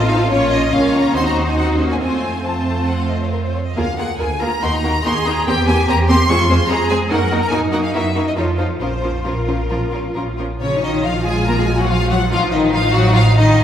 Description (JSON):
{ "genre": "quick classical-period movement for string orchestra", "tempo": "132-147 BPM", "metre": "4/4", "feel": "rubato", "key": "Bb minor", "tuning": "A4 = 442 Hz", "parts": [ { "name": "rich studio violin section", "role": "melody", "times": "0.0-13.6 s", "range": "Bb4 to Db6", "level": "-21 LUFS", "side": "left 2 dB", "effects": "none" }, { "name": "rich studio violin section", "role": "second line", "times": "0.0-13.6 s", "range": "Db4 to Db5", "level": "-23 LUFS", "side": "left 3 dB", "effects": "none" }, { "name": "rich studio viola section", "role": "accompaniment", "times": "0.0-13.6 s", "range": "F3 to F4", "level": "-21 LUFS", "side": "equal", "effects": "none" }, { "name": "rich studio cello section", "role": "bass", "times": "0.0-13.6 s", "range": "Db3 to Bb4", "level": "-22 LUFS", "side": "right 1 dB", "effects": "none" }, { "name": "rich studio double bass section", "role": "bass", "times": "0.0-13.6 s", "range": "A1 to Gb2", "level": "-19 LUFS", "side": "right 1 dB", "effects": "none" } ], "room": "wet scoring stage reverb, RT60 1.9 s", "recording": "heard from further back in the room", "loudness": "-15 LUFS", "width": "side -10 dB against mid", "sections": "0.0-10.6 A section; 10.6-13.6 A section", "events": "none", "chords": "0.3 Bbm; 1.1 Cdim/Eb; 2.0 F; 3.8 Bb7/D; 4.6 Ebm; 5.5 C7/E; 6.3 Fm; 7.1 Ebm/Gb; 7.9 Gb7; 8.4 F7(no3); 8.8 Bbm; 12.3 F7/A", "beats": "| 0.31 0.73 1.15 1.57 | 2.01 2.45 2.89 3.33 | 3.77 4.20 4.62 5.05 | 5.46 5.88 6.29 6.70 | 7.11 7.52 7.94 8.37 | 8.81 9.27 9.71 10.16 | 10.61 11.04 11.47 11.90 | 12.32 12.74 13.15 13.57" }